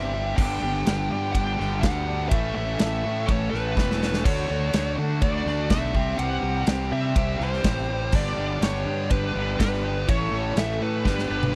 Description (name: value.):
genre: classic rock.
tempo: 124 BPM.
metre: 4/4.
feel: straight.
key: unclear.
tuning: A4 = 442 Hz.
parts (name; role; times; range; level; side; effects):
fuzz lead guitar; melody; 0.0-11.6 s; B4 to G5; -32 LUFS; equal; wah, distortion, slapback echo.
picked old ladder-braced acoustic guitar; accompaniment; 0.0-11.6 s; G2 to A4; -41 LUFS; equal; none.
biting overdriven guitar; riff; 0.0-11.6 s; G2 to A4; -35 LUFS; equal; none.
overdriven electric guitar; riff; 0.0-11.6 s; G2 to D4; -34 LUFS; equal; none.
fuzz fingered electric bass; bass; 0.0-11.5 s; E1 to D3; -30 LUFS; equal; overdrive.
big rock drum kit; drums; 0.4-11.5 s; crash cymbal, kick drum, ride cymbal, snare drum, toms; -26 LUFS; equal; none.
room: little or no reverb.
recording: dry, close 1970s-style studio recording.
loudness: -24 LUFS.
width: mono.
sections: 0.0-11.6 A section.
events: drum fill 3.8-4.3, 11.1-11.6.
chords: 0.4 G; 2.3 A; 4.3 D; 6.0 C; 8.1 G; 10.1 A.